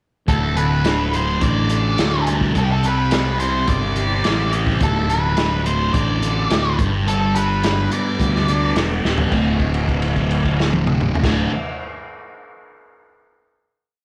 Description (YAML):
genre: psychedelic rock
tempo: 106 BPM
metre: 4/4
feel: straight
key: unclear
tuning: A4 = 438 Hz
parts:
  - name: octave-fuzz lead guitar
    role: melody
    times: 0.3-8.7 s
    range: G4 to D5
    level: -25 LUFS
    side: equal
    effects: distortion, slapback echo
  - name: thick fuzz guitar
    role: riff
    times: 0.3-11.5 s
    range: D2 to C5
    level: -23 LUFS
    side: equal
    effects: distortion, phaser
  - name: fuzz fingered electric bass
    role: bass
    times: 0.3-11.5 s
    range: D1 to D2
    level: -24 LUFS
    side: equal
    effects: overdrive
  - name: crunchy breakbeat drum kit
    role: drums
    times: 0.3-11.4 s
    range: crash cymbal, hi-hat, kick drum, snare drum, toms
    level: -25 LUFS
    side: equal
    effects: none
room: light reverb, small room ambience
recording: none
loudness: -19 LUFS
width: mono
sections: 0.3-9.3 verse; 9.3-11.6 final chord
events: drum fill 9.0; held note 9.3-11.2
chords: 0.3 Dsus4; 2.6 Cadd9; 4.8 D5; 6.8 G; 9.3 D5